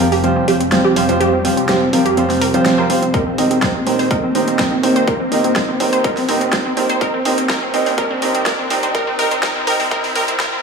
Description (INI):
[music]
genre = progressive house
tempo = 124 BPM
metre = 4/4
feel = straight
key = unclear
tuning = A4 = 436 Hz
[part]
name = airy breathy pad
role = sustained chords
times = 0.0-10.6 s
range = Eb3 to C4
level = -23 LUFS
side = equal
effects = chorus, sidechain pumping
[part]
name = wide unison pluck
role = arpeggios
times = 0.0-10.6 s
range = C4 to C5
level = -18 LUFS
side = equal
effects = cassette tape, sidechain pumping, dub echo
[part]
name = bright baby grand piano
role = stabs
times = 0.0-10.5 s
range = Eb3 to Eb5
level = -19 LUFS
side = right 4 dB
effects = sidechain pumping, dub echo
[part]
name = dark detuned saw bass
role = bass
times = 0.0-10.6 s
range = Eb1 to F1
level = -29 LUFS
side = equal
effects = sidechain pumping
[part]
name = big-room dance drum kit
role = drums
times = 0.0-10.5 s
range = hi-hat, snare drum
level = -22 LUFS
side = equal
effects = overdrive
[part]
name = riser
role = sound effects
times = 2.0-10.6 s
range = none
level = -28 LUFS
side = right 1 dB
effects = none
[part]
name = electronic kick drum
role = drums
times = 3.1-10.5 s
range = none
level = -22 LUFS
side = equal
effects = overdrive
[sound]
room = moderate digital room reverb, RT60 1.2 s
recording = high-pass filter, studio ambience, faint mains hum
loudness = -14 LUFS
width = side -5 dB against mid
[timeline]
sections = 0.0-10.6 A section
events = build-up 0.0-10.6; filter sweep on synth pluck 0.0-10.6; filter sweep 0.0-10.6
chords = 0.0 Fsus2; 3.1 Cm7/Eb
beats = 0.24 0.72 | 1.21 1.69 2.17 2.66 | 3.14 3.62 4.11 4.59 | 5.08 5.56 6.04 6.53 | 7.01 7.50 7.98 8.46 | 8.95 9.43 9.91 10.40